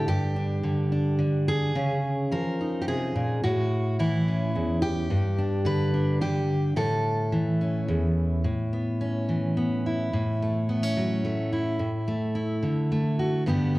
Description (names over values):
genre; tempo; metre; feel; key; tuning
folk, solo fingerstyle acoustic guitar; 108 BPM; 3/4; straight; A mixolydian; A4 = 440 Hz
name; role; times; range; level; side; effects
fingerpicked steel-string acoustic guitar; solo; 0.0-13.8 s; E2 to B4; -24 LUFS; equal; none
room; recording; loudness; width
wet recital hall reverb, RT60 1.6 s; worn, warbling old tape, cassette tape, warbly pitch drift; -24 LUFS; side -19 dB against mid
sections
0.0-8.5 A section; 8.5-13.8 B section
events
none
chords
0.1 G5; 1.8 C#add9; 3.4 A; 5.1 G; 6.8 A; 8.5 Aadd9; 10.1 F#m7/A; 11.8 Dadd9/A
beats
| 0.07 0.63 1.20 | 1.76 2.32 2.89 | 3.45 4.00 4.56 | 5.11 5.66 6.22 | 6.77 7.33 7.89 | 8.46 9.02 9.57 | 10.13 10.69 11.24 | 11.79 12.35 12.90 | 13.46